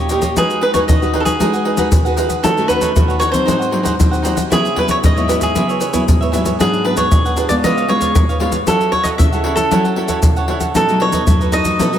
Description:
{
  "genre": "samba and choro",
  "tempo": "116 BPM",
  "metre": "4/4",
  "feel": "straight",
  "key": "unclear",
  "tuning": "A4 = 440 Hz",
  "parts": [
    { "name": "cavaquinho", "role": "melody", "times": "0.0-12.0 s", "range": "G#4 to E5", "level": "-18 LUFS", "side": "equal", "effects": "ping-pong delay" },
    { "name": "cavaquinho", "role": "accompaniment", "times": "0.0-12.0 s", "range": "D4 to F#5", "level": "-22 LUFS", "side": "right 5 dB", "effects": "none" },
    { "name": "nylon-string guitar", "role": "accompaniment", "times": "0.0-12.0 s", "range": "F#2 to B4", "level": "-20 LUFS", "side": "left 1 dB", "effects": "wide subtle chorus" },
    { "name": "maracas, pandeiro and surdo", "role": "percussion", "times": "0.1-12.0 s", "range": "none", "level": "-16 LUFS", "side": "left 1 dB", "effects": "none" }
  ],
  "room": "moderate plate reverb, RT60 2.7 s",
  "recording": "dreamy mix soaked in reverb",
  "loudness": "-13 LUFS",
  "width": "side -10 dB against mid",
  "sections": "0.0-12.0 A section",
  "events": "none",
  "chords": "0.4 G#m7; 2.4 D#m7b5; 3.5 G#7; 4.5 C#m7; 6.6 G#m7b5; 7.6 C#7; 8.7 F#m7; 10.8 B7",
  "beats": "| 0.36 0.88 1.40 1.92 | 2.44 2.96 3.48 4.00 | 4.52 5.04 5.56 6.08 | 6.60 7.12 7.64 8.16 | 8.68 9.20 9.72 10.24 | 10.76 11.28 11.79"
}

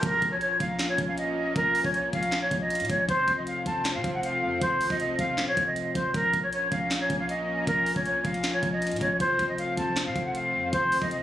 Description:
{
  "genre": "hip hop, trap",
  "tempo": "157 BPM",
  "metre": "4/4",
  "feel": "half-time",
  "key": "Bb harmonic minor",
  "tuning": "A4 = 442 Hz",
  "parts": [
    { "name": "breathy jazz flute", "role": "melody", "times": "0.0-11.2 s", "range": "Bb4 to A5", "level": "-26 LUFS", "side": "equal", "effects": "low-pass filter, digital delay" },
    { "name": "warm chamber string section", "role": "sustained chords", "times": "0.0-11.2 s", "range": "F3 to Db4", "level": "-33 LUFS", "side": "left 2 dB", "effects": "none" },
    { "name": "warm 808-style bass", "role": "bass", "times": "0.0-11.2 s", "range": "Eb1 to C3", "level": "-35 LUFS", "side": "equal", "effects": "none" },
    { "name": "trap drum kit", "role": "drums", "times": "0.0-11.2 s", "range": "handclaps, hi-hat, kick drum, snare drum", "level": "-32 LUFS", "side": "equal", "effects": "none" }
  ],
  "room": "moderate recital hall reverb, RT60 1.4 s",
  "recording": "recorded on a phone in the room, studio ambience",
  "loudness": "-24 LUFS",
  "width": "side -12 dB against mid",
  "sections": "0.0-11.2 A section",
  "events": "none",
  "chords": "0.0 Bbm; 3.1 F; 6.1 Bbm; 9.2 F",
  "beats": "| 0.03 0.41 0.79 1.18 | 1.56 1.94 2.32 2.70 | 3.09 3.47 3.85 4.23 | 4.62 5.00 5.38 5.76 | 6.14 6.53 6.91 7.29 | 7.67 8.05 8.44 8.82 | 9.20 9.58 9.97 10.35 | 10.73 11.11"
}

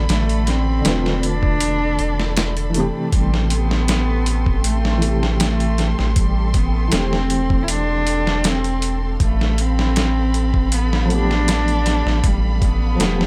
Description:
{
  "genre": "trip hop",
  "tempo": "79 BPM",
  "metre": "4/4",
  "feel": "straight",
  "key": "A minor",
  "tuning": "A4 = 445 Hz",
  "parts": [
    { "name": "felt-muted upright piano", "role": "accompaniment", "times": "0.0-13.3 s", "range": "C3 to B4", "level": "-27 LUFS", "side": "equal", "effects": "tremolo" },
    { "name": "warm studio string section", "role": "sustained chords", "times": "0.0-13.3 s", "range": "A4 to C6", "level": "-33 LUFS", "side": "equal", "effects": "vintage 12-bit sampler grit" },
    { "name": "round analog bass", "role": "bass", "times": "0.0-13.3 s", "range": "E1 to A1", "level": "-22 LUFS", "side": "equal", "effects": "none" },
    { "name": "dark cello", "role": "melody", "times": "0.1-13.3 s", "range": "G3 to E4", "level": "-26 LUFS", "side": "equal", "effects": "tape echo" },
    { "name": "dusty soul sampler-style drum kit", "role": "drums", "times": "0.1-13.3 s", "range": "hi-hat, kick drum, snare drum", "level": "-23 LUFS", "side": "equal", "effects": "overdrive" }
  ],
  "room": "small room ambience",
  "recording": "none",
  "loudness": "-19 LUFS",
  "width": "mono",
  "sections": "0.0-13.3 A section",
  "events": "none",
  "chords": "0.0 Bm7b5; 3.1 Am7; 9.2 G9/A",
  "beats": "| 0.09 0.85 1.61 2.37 | 3.12 3.88 4.64 5.40 | 6.16 6.92 7.68 8.44 | 9.20 9.96 10.72 11.48 | 12.24 13.00"
}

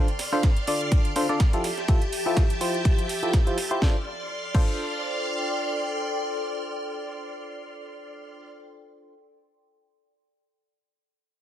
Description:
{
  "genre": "piano house",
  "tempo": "124 BPM",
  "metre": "4/4",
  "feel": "swing 55% on 16ths",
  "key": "D minor",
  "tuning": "A4 = 438 Hz",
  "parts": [
    { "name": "string machine, violins", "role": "sustained chords", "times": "0.0-8.5 s", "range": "G4 to G6", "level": "-32 LUFS", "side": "equal", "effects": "ensemble chorus, sidechain pumping" },
    { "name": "barking FM electric piano", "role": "riff", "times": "0.0-9.2 s", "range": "D3 to D5", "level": "-29 LUFS", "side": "left 1 dB", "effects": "chorus, tremolo, sidechain pumping, low-pass filter, digital delay" },
    { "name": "warbly tape-like pad", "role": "texture", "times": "0.0-8.4 s", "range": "F3 to C6", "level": "-35 LUFS", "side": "left 1 dB", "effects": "chorus, built-in reverb, sidechain pumping" },
    { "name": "house drum kit", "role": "drums", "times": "0.1-4.7 s", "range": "crash cymbal, hi-hat, snare drum", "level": "-34 LUFS", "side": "right 2 dB", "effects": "none" },
    { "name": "breakbeat sampler-style drum kit", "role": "drums", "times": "0.2-3.7 s", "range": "ride cymbal, snare drum", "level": "-39 LUFS", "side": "right 2 dB", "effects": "high-pass filter on cymbals, high-pass filter on snare" },
    { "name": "electronic kick drum", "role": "drums", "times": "0.4-4.7 s", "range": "none", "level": "-21 LUFS", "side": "equal", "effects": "none" }
  ],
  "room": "light reverb",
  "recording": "none",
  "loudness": "-22 LUFS",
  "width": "side -12 dB against mid",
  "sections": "0.0-3.8 A section; 3.8-7.7 B section",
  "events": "filter sweep on FM electric piano 0.0-3.8",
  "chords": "0.0 Dm7; 1.6 Fmaj9; 3.8 Dm7",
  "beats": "0.43 0.92 1.40 | 1.88 2.37 2.85 3.33 | 3.82 4.30 4.79 5.27 | 5.75 6.24 6.72 7.21"
}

